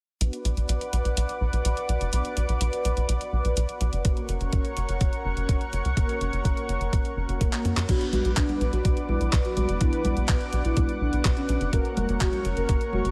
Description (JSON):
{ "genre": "italo disco", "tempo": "125 BPM", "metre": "4/4", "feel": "straight", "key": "B harmonic minor", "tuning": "A4 = 440 Hz", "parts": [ { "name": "lush unison pad", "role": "sustained chords", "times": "0.2-13.1 s", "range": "A#4 to D6", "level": "-34 LUFS", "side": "equal", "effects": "chorus" }, { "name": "mellow synth brass", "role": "stabs", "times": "0.2-13.1 s", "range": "A#3 to B4", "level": "-37 LUFS", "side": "equal", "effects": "chorus" }, { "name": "tight sequencer bass", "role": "bass", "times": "0.2-13.1 s", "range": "F#1 to F#2", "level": "-29 LUFS", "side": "equal", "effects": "none" }, { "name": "clean 12-bit digital drum machine", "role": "drums", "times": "0.2-13.1 s", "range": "congas, crash cymbal, handclaps, hi-hat", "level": "-34 LUFS", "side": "equal", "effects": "none" }, { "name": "electronic kick drum", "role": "drums", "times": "4.0-12.8 s", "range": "none", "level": "-27 LUFS", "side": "equal", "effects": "none" }, { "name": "soft octave-layered synth lead", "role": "melody", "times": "7.9-13.1 s", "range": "C#4 to A#4", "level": "-32 LUFS", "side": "equal", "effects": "chorus, phaser, digital delay" } ], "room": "light reverb, digital ambience", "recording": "lossy compression artefacts", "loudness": "-26 LUFS", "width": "mono", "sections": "0.2-7.9 A section; 7.9-13.1 B section", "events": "filter sweep on analog polysynth 0.2-7.9; drum fill 7.5-7.9", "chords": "0.2 Bm; 4.0 F#; 7.9 Bm; 11.7 F#" }